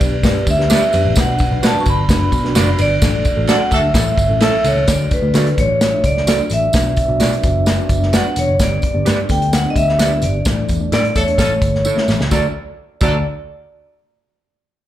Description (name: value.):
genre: uptempo 1960s-style soul.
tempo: 129 BPM.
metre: 4/4.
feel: straight.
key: D major.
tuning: A4 = 440 Hz.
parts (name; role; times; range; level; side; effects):
vibraphone with medium hard mallets; melody; 0.0-13.2 s; B4 to C#6; -19 LUFS; right 1 dB; slapback echo.
mellow tine electric piano; accompaniment; 0.0-13.2 s; A3 to E5; -25 LUFS; left 2 dB; slow stereo tremolo, slapback echo.
percussive tonewheel organ; sustained chords; 0.0-12.5 s; E3 to D4; -28 LUFS; right 1 dB; slow rotary speaker, overdrive, chorus vibrato.
vintage muted picked electric bass; bass; 0.0-13.2 s; E1 to D3; -19 LUFS; left 1 dB; none.
warm soul drum kit; drums; 0.0-13.1 s; crash cymbal, hi-hat, kick drum, ride cymbal, snare drum; -17 LUFS; equal; none.
tambourine; percussion; 0.0-13.2 s; none; -29 LUFS; right 2 dB; none.
mellow electric guitar; stabs; 0.7-13.2 s; E4 to D5; -23 LUFS; right 8 dB; lush chorus, slapback echo.
warm horn section; second line; 3.5-4.9, 11.2-13.2 s; F#3 to A4; -23 LUFS; equal; slapback echo.
room: small room ambience.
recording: live gig heard through the venue's PA, club reverb.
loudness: -13 LUFS.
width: side -12 dB against mid.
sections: 0.0-4.9 A section; 4.9-12.3 B section; 12.3-14.2 C section.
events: band accent 3.0-4.9, 10.5-12.3; drum fill 11.8-12.3.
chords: 0.0 G; 1.2 Bm; 3.0 D/A; 3.9 A; 4.9 D; 6.7 Bm; 8.6 G; 10.5 Asus4; 11.4 A; 12.3 D.